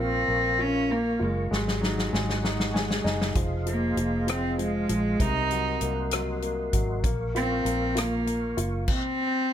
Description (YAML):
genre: six-eight pop ballad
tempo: 65 BPM (dotted quarters)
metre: 6/8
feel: straight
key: Bb minor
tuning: A4 = 439 Hz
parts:
  - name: warm cello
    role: melody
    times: 0.0-9.5 s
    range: Gb3 to Eb4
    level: -27 LUFS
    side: equal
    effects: none
  - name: warm baby grand piano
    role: accompaniment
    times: 0.0-8.9 s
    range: C3 to Ab5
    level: -32 LUFS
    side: left 2 dB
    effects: none
  - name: percussive tonewheel organ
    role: sustained chords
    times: 0.0-8.9 s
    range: Ab4 to Db6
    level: -35 LUFS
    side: right 2 dB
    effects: chorus vibrato, slow rotary speaker
  - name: vintage muted fingered electric bass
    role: bass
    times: 0.0-8.9 s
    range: F1 to C2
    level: -31 LUFS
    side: equal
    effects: none
  - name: natural country drum kit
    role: drums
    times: 1.5-9.0 s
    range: crash cymbal, hi-hat, kick drum, rim click, snare drum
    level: -28 LUFS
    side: equal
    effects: none
room: light reverb, small room ambience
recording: none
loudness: -24 LUFS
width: side -10 dB against mid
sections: 0.0-9.5 A section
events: drum fill 1.5-3.4; grand piano fill 2.4-3.4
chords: 0.0 Bbm; 1.5 Ab7sus4; 3.4 Fm7; 5.2 Cm7b5; 7.0 Bbm; 8.9 N.C.